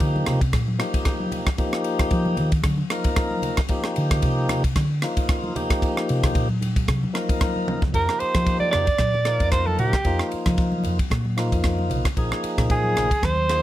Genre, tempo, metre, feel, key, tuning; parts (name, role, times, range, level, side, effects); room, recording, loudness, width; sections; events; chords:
electric jazz fusion; 114 BPM; 4/4; swing 55% on 16ths; A4 = 439 Hz
tonewheel organ; accompaniment; 0.0-13.6 s; F3 to Bb4; -26 LUFS; left 1 dB; overdrive, slow rotary speaker
hollow-body short-scale fingered electric bass; bass; 0.0-13.6 s; Bb1 to F3; -24 LUFS; equal
crisp fusion drum kit; drums; 0.0-13.6 s; kick drum, ride cymbal, rim click, toms; -24 LUFS; equal
congas; percussion; 0.2-13.5 s; -32 LUFS; equal
warm soprano saxophone; melody; 7.9-13.6 s; G4 to D5; -22 LUFS; right 3 dB; slapback echo
little or no reverb; -20 LUFS; side -14 dB against mid
0.0-7.9 A section; 7.9-13.6 B section
fingered electric bass solo 0.0-7.9; drum fill 7.4-7.9
0.0 F9sus4; 3.7 Bbsus24; 5.6 F9sus4; 7.9 F13sus4; 12.2 Bb9sus4